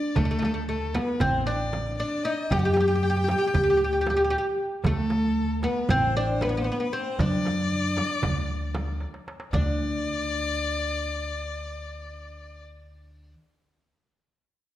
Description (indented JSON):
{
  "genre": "Turkish makam ensemble",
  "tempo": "230 BPM (eighths)",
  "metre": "9/8",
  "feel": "straight",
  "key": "D makam hicaz",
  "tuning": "A4 = 443 Hz",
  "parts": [
    { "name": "oud", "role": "melody", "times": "0.0-13.3 s", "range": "A3 to G4", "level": "-26 LUFS", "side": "equal", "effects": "none" },
    { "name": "clear violin", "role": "second line", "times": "0.0-12.6 s", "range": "A4 to G5", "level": "-32 LUFS", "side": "left 4 dB", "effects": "none" },
    { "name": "upright bass", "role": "bass", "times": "0.2-13.3 s", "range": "A1 to F#2", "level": "-29 LUFS", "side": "equal", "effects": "none" },
    { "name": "darbuka", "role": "percussion", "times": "0.2-9.8 s", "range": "none", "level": "-33 LUFS", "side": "right 2 dB", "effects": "none" },
    { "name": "frame drum", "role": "percussion", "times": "0.2-9.8 s", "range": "none", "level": "-32 LUFS", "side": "right 2 dB", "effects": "none" }
  ],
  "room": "moderate recital hall reverb, RT60 1.5 s",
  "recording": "dark, warm production",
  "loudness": "-23 LUFS",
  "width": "side -13 dB against mid",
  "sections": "0.0-9.5 A section; 9.5-11.9 B section",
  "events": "drum fill 9.0-9.5",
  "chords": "none",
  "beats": "| 0.16 0.42 0.68 0.94 1.21 1.47 1.73 1.99 2.25 | 2.50 2.77 3.02 3.29 3.55 3.81 4.07 4.33 4.59 | 4.85 5.11 5.37 5.63 5.89 6.15 6.41 6.67 6.93 | 7.19 7.45 7.71 7.97 8.23 8.49 8.75 9.01 9.27 | 9.53 9.79 10.05 10.31 10.57 10.84 11.10 11.36 11.62"
}